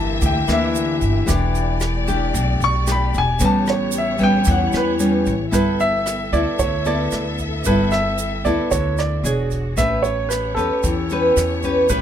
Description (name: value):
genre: bossa nova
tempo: 113 BPM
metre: 4/4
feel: straight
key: unclear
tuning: A4 = 441 Hz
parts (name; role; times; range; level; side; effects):
- warm baby grand piano; melody; 0.0-12.0 s; A4 to C#6; -22 LUFS; right 1 dB; none
- nylon-string guitar; accompaniment; 0.0-12.0 s; G2 to C#5; -20 LUFS; left 1 dB; none
- warm symphonic string section; sustained chords; 0.0-12.0 s; A3 to E5; -28 LUFS; left 3 dB; none
- upright bass; bass; 0.0-12.0 s; E1 to E2; -23 LUFS; equal; none
- jazz brush drum kit; drums; 0.2-12.0 s; hi-hat, kick drum, rim click; -27 LUFS; equal; none
- egg shaker; percussion; 0.2-12.0 s; none; -31 LUFS; right 10 dB; none
room: little or no reverb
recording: close, detailed microphones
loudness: -17 LUFS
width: side -9 dB against mid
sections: 0.0-5.5 A section; 5.5-12.0 B section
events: grand piano solo 0.0-5.5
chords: 0.0 Gm6; 1.3 Em7; 3.4 A9; 5.5 G69; 9.2 E13; 9.8 A9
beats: 0.22 0.75 | 1.28 1.81 2.34 2.88 | 3.41 3.94 4.47 5.00 | 5.53 6.06 6.59 7.12 | 7.65 8.18 8.71 9.24 | 9.78 10.31 10.84 11.37 | 11.90